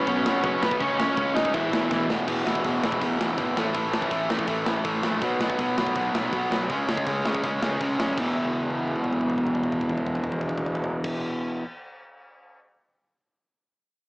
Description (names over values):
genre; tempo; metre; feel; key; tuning
punk rock; 163 BPM; 4/4; straight; E major; A4 = 440 Hz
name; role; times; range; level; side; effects
overdriven electric guitar; melody; 0.0-2.1 s; E3 to D#5; -25 LUFS; equal; cassette tape
distorted electric guitar; riff; 0.0-11.6 s; E2 to C#4; -25 LUFS; equal; distortion, cassette tape
fuzz picked electric bass; bass; 0.1-11.1 s; E1 to F#2; -33 LUFS; equal; overdrive
tight metal drum kit; drums; 0.1-12.6 s; crash cymbal, hi-hat, kick drum, snare drum, toms; -30 LUFS; equal; cassette tape
room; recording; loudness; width
light reverb; home recording on cassette, small speaker sound; -23 LUFS; side -26 dB against mid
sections
0.0-2.3 A section; 2.3-8.2 B section; 8.2-11.1 C section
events
drum fill 1.9-2.3, 8.4-11.0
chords
0.0 B5; 0.8 C#5; 1.5 E5; 3.6 A5; 5.2 B5; 6.7 C#5; 8.2 E5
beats
0.08 0.44 | 0.81 1.18 1.54 1.91 | 2.28 2.65 3.01 3.38 | 3.75 4.12 4.49 4.85 | 5.22 5.59 5.96 6.33 | 6.70 7.07 7.44 7.81 | 8.18 8.55 8.92 9.29 | 9.66 10.03 10.40 10.77